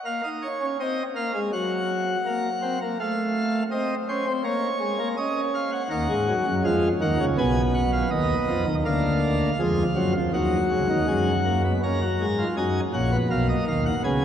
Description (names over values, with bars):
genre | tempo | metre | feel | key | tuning
classical, baroque-style 3-part fugue for pipe organ | 82 BPM | 4/4 | straight | Eb minor | A4 = 438 Hz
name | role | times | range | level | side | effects
pipe organ, plenum | solo | 0.1-14.2 s | A#1 to A#5 | -22 LUFS | equal | none
room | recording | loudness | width
wet cathedral reverb, RT60 5.2 s | worn, warbling old tape, cassette tape, warbly pitch drift | -22 LUFS | side -9 dB against mid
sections
0.0-11.8 A section; 11.8-14.2 B section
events
none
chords
0.1 Bbm; 1.5 Gb; 3.0 F7/A; 4.5 Bbm; 5.9 Ebm; 7.4 Abm/Cb; 8.9 Bb7/D; 10.3 Ebm; 11.8 F#; 13.3 B